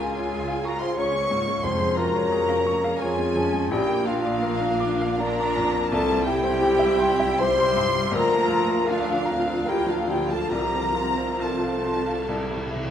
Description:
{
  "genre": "classical",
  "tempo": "67-92 BPM",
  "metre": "3/4",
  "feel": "rubato",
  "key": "Db major",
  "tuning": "A4 = 440 Hz",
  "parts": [
    { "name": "clear baby grand piano", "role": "melody", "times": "0.0-12.9 s", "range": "Bb1 to D6", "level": "-28 LUFS", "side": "left 2 dB", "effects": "none" },
    { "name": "rich chamber violin section", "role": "melody", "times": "0.0-12.7 s", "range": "F5 to Db6", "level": "-35 LUFS", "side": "left 2 dB", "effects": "none" },
    { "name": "mellow clarinet", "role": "second line", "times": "0.0-12.7 s", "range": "D4 to Ab4", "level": "-33 LUFS", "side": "equal", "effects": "none" },
    { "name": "mellow hollow silver concert flute", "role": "second line", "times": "0.0-12.7 s", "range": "F5 to Db6", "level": "-31 LUFS", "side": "equal", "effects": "none" },
    { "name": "warm chamber violin section", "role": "second line", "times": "0.0-12.7 s", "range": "F5 to Db6", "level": "-31 LUFS", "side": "left 2 dB", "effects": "none" },
    { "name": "warm studio viola section", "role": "accompaniment", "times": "0.0-12.9 s", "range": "F3 to F4", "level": "-32 LUFS", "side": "right 2 dB", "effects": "none" },
    { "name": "mellow French horn section", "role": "sustained chords", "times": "0.0-12.7 s", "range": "F4 to Db5", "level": "-25 LUFS", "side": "left 2 dB", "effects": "none" },
    { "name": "dark chamber double bass section", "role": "bass", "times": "0.0-12.9 s", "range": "Bb1 to F2", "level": "-34 LUFS", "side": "right 4 dB", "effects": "none" },
    { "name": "warm studio cello section", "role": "bass", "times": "0.0-12.7 s", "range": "G3 to F4", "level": "-33 LUFS", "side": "right 5 dB", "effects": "none" },
    { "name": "timpani", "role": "percussion", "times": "1.6-2.6, 12.3-12.9 s", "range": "F2 to C3", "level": "-35 LUFS", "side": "equal", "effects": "none" }
  ],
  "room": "wet concert hall reverb, RT60 1.9 s",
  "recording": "none",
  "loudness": "-21 LUFS",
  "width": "side -9 dB against mid",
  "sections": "0.0-12.9 A section",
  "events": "timpani fill 12.3-12.9",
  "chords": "0.0 Db; 1.6 Db/F; 3.7 Bb; 5.9 C; 8.2 Bb/D; 10.5 F/C; 12.3 C",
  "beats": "0.34 0.99 | 1.65 2.33 3.02 | 3.71 4.42 5.20 | 5.92 6.61 7.41 | 8.15 8.89 9.68 | 10.53 11.42 12.29"
}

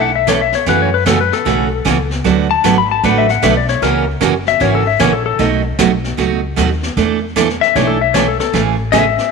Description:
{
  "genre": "country, western swing",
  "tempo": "153 BPM",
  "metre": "4/4",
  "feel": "swing 64% on 8ths",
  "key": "unclear",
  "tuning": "A4 = 441 Hz",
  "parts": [
    { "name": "clean lap steel guitar", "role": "second line", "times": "0.0-9.3 s", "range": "A4 to B5", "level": "-15 LUFS", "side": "left 12 dB", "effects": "none" },
    { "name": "picked steel-string acoustic guitar", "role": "accompaniment", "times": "0.0-9.0 s", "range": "B2 to B4", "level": "-15 LUFS", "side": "right 10 dB", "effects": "none" },
    { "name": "upright bass", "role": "bass", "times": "0.0-9.2 s", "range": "F#1 to F#2", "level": "-20 LUFS", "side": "left 1 dB", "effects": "none" },
    { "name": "jazz brush drum kit", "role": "drums", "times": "0.3-9.3 s", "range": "brushed snare drum, hi-hat, kick drum, snare drum", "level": "-22 LUFS", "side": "left 3 dB", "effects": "none" }
  ],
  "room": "moderate echo chamber reverb, RT60 2.2 s",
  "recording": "1960s-style stereo with parts hard left and right",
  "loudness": "-12 LUFS",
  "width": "side -4 dB against mid",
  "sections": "0.0-9.3 A section",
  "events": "electric slide guitar solo 0.0-9.3",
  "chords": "0.0 E7sus4; 0.7 F#m7; 2.2 D6; 3.8 F#7; 5.4 B7; 7.0 E7sus4; 8.5 Amaj7",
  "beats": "0.28 | 0.67 1.06 1.46 1.85 | 2.25 2.64 3.04 3.43 | 3.82 4.21 4.61 5.00 | 5.39 5.79 6.18 6.57 | 6.96 7.36 7.75 8.14 | 8.53 8.93"
}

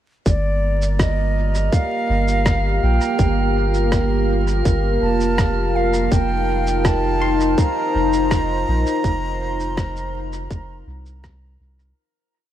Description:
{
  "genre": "ambient dub",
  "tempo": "82 BPM",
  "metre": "4/4",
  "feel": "straight",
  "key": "G minor",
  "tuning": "A4 = 442 Hz",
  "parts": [
    { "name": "bright wooden flute", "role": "melody", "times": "0.3-11.2 s", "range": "D5 to Bb5", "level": "-25 LUFS", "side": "right 2 dB", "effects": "dub echo" },
    { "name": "warm analog pad", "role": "sustained chords", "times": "0.3-12.0 s", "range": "Bb3 to F5", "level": "-22 LUFS", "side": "left 1 dB", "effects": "chorus" },
    { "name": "soft dub sub bass", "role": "bass", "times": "0.3-11.9 s", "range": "F1 to C2", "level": "-21 LUFS", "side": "equal", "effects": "none" },
    { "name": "electronic cabasa and rim click", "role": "drums", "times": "0.3-11.9 s", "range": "none", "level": "-29 LUFS", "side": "equal", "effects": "dub echo" },
    { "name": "electronic kick drum", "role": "drums", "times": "0.3-11.4 s", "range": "none", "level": "-19 LUFS", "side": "equal", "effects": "none" },
    { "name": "drifting glass-harmonics texture", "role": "texture", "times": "0.7-12.0 s", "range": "Bb4", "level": "-30 LUFS", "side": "right 2 dB", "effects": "chorus, built-in reverb" },
    { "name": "pedal steel guitar", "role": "arpeggios", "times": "7.2-10.2 s", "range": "C6", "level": "-34 LUFS", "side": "left 1 dB", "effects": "dub echo" }
  ],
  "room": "light reverb, digital ambience",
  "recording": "vinyl crackle",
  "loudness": "-17 LUFS",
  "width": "side -11 dB against mid",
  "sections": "0.3-12.0 groove",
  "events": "fade-out 8.1-12.0",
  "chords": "0.3 Gm7; 6.1 F7sus4",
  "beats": "| 0.26 0.99 1.73 2.46 | 3.19 3.92 4.65 5.38 | 6.12 6.85 7.58 8.31 | 9.04 9.77 10.51 11.24"
}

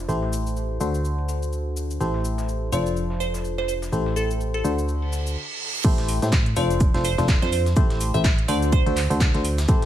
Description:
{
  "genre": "piano house",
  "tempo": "125 BPM",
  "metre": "4/4",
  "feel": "swing 58% on 16ths",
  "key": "A minor",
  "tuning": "A4 = 436 Hz",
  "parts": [
    { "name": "barking FM electric piano", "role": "riff", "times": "0.0-9.9 s", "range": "D3 to C5", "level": "-27 LUFS", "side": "left 2 dB", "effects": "chorus, sidechain pumping, dub echo" },
    { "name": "solid FM bass", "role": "bass", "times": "0.0-9.9 s", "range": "F1 to A2", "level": "-25 LUFS", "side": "equal", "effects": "sidechain pumping" },
    { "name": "breakbeat sampler-style drum kit", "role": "drums", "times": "0.1-9.9 s", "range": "hi-hat, shaker, snare drum", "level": "-38 LUFS", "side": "equal", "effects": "high-pass filter on snare, low-pass filter on snare, studio reverb, high-pass filter on perc, low-pass filter on perc, high-pass filter on hats, low-pass filter on hats" },
    { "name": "house drum kit", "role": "drums", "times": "0.1-9.9 s", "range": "crash cymbal, handclaps, hi-hat, shaker", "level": "-32 LUFS", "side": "equal", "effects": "studio reverb" },
    { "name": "glassy wavetable pluck", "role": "melody", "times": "2.7-9.1 s", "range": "A4 to E5", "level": "-29 LUFS", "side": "right 3 dB", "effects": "chorus, dub echo" },
    { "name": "reverse cymbal", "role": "sound effects", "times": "5.1-5.8 s", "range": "none", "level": "-30 LUFS", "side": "right 5 dB", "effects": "none" },
    { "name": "electronic kick drum", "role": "drums", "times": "5.8-9.8 s", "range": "none", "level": "-19 LUFS", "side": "equal", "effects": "studio reverb" }
  ],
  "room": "little or no reverb",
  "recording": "none",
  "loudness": "-20 LUFS",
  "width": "side -12 dB against mid",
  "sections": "0.0-5.8 A section; 5.8-9.9 B section",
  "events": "reverse cymbal 5.1-5.8; drop 5.8-9.9",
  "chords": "0.1 Am7; 0.8 D7; 2.0 Am7; 2.7 F6; 3.9 Am7; 4.6 D7; 5.8 Am7; 6.6 F6; 7.8 Am7; 8.5 D7",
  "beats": "| 0.09 0.57 1.05 1.53 | 2.01 2.49 2.97 3.45 | 3.93 4.41 4.89 5.37 | 5.85 6.33 6.81 7.29 | 7.77 8.25 8.73 9.21 | 9.69"
}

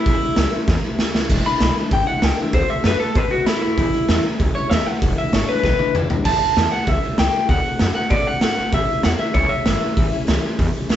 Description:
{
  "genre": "rockabilly",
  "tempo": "194 BPM",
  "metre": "4/4",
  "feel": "straight",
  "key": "A mixolydian",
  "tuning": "A4 = 440 Hz",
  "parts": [
    { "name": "electric guitar through a small old amp", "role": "melody", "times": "0.0-10.7 s", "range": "E4 to B5", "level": "-21 LUFS", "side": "left 1 dB", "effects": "slapback echo" },
    { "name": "picked steel-string acoustic guitar", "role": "accompaniment", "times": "0.0-11.0 s", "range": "E2 to F#4", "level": "-27 LUFS", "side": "left 2 dB", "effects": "none" },
    { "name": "upright bass", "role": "bass", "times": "0.1-11.0 s", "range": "E1 to A2", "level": "-23 LUFS", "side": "equal", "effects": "none" },
    { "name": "raw garage drum kit", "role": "drums", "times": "0.1-11.0 s", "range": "crash cymbal, hi-hat, kick drum, snare drum, toms", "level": "-20 LUFS", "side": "equal", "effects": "none" }
  ],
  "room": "light reverb",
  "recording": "band playing live in one room, nothing above 7.9 kHz",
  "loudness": "-16 LUFS",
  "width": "side -11 dB against mid",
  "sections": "0.0-6.3 A section; 6.3-11.0 B section",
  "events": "clean electric guitar solo 0.0-6.3; drum fill 0.7-1.3, 5.6-6.3",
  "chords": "0.0 A7; 1.3 E7; 2.5 D7; 3.8 A7; 5.0 E7; 6.3 A7; 7.5 D7; 8.7 A7",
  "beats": "| 0.07 0.38 0.69 1.00 | 1.31 1.62 1.93 2.24 | 2.55 2.85 3.16 3.47 | 3.78 4.09 4.40 4.71 | 5.02 5.33 5.64 5.95 | 6.26 6.57 6.88 7.19 | 7.50 7.80 8.11 8.42 | 8.73 9.04 9.35 9.66 | 9.97 10.28 10.59 10.90"
}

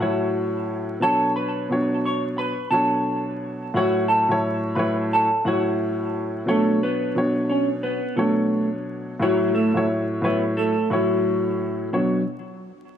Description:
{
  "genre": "hip hop",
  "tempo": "88 BPM",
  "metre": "4/4",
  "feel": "swing 59% on 16ths",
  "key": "B minor",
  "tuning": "A4 = 443 Hz",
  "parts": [
    { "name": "mellow electric guitar", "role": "melody", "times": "0.0-12.2 s", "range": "F#3 to C#6", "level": "-23 LUFS", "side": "equal", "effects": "high-pass filter, low-pass filter, ping-pong delay" },
    { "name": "dark upright piano", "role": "accompaniment", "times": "0.0-12.2 s", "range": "A2 to C#5", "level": "-23 LUFS", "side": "equal", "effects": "cassette tape, high-pass filter, low-pass filter" }
  ],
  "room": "light reverb, small room ambience",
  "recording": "dark, warm production, vinyl crackle",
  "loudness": "-20 LUFS",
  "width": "side -9 dB against mid",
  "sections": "0.0-6.5 A section; 6.5-11.9 B section; 11.9-13.0 C section",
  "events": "none",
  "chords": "0.0 F#m7/A; 1.0 Bmadd9; 3.8 F#m7/A; 6.5 Bmadd9; 9.2 F#m7/A; 11.9 Bmadd9",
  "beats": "0.34 | 1.02 1.70 2.39 3.07 | 3.75 4.43 5.11 5.79 | 6.48 7.16 7.84 8.52 | 9.20 9.89 10.57 11.25 | 11.93"
}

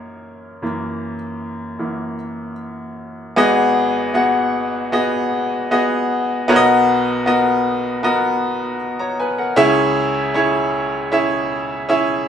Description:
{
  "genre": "pop",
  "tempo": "77 BPM",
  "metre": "4/4",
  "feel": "straight",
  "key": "unclear",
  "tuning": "A4 = 439 Hz",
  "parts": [
    { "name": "bright upright piano", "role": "solo", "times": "0.0-12.3 s", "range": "G#1 to A#5", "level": "-16 LUFS", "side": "equal", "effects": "none" }
  ],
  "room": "moderate studio reverb, RT60 0.7 s",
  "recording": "band playing live in one room",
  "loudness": "-16 LUFS",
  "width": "side -8 dB against mid",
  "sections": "0.0-3.4 A section; 3.4-12.3 B section",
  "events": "upright piano solo 0.0-3.4",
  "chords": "0.0 F#7; 3.4 G#m7; 6.5 Bmaj7; 9.6 C#m",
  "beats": "| 0.22 1.00 1.78 2.58 | 3.36 4.14 4.93 5.71 | 6.49 7.26 8.04 8.81 | 9.58 10.35 11.12 11.89"
}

